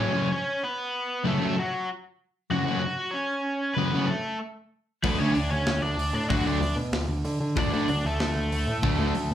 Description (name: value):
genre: punk rock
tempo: 190 BPM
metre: 4/4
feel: straight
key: unclear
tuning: A4 = 440 Hz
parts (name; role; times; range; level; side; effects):
- cranked stack guitar; melody; 0.0-9.3 s; F#3 to F#5; -28 LUFS; equal; overdrive
- sludgy distorted guitar; riff; 0.0-9.1 s; F#2 to D4; -28 LUFS; left 8 dB; overdrive, slapback echo
- sludgy distorted guitar; riff; 0.0-9.1 s; F#2 to D4; -29 LUFS; right 7 dB; overdrive, slapback echo
- growling picked electric bass; bass; 5.0-9.3 s; D2 to D3; -28 LUFS; equal; overdrive
- tight metal drum kit; drums; 5.0-9.2 s; crash cymbal, hi-hat, kick drum, snare drum; -32 LUFS; equal; none
room: light reverb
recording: live gig heard through the venue's PA, club reverb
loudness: -24 LUFS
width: side -11 dB against mid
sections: 0.0-9.3 A section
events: half time 0.0-9.3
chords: 0.0 F#m; 5.0 D